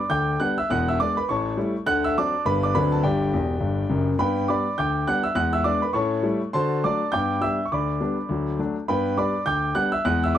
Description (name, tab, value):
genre	jazz, stride piano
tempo	205 BPM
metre	4/4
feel	swing 60% on 8ths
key	G major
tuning	A4 = 440 Hz
part	clear concert grand piano	solo	0.0-10.4 s	E1 to G6	-21 LUFS	equal	none
room	wet studio reverb, RT60 0.5 s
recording	none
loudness	-21 LUFS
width	side -10 dB against mid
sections	0.0-4.2 A section; 4.2-10.4 A section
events	grand piano fill 3.3-4.2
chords	0.0 G; 0.7 E7; 1.3 A7; 1.9 D7; 2.4 G; 2.7 D7; 3.0 G5; 4.2 G; 5.4 E7; 6.0 A7; 6.5 D7; 7.1 G; 7.7 G/D; 8.3 D; 8.9 G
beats	0.10 0.39 | 0.69 0.98 1.27 1.56 | 1.86 2.15 2.44 2.73 | 3.03 3.32 3.61 3.90 | 4.20 4.49 4.78 5.07 | 5.37 5.66 5.95 6.24 | 6.54 6.83 7.12 7.41 | 7.71 8.00 8.29 8.58 | 8.87 9.17 9.46 9.75 | 10.04 10.34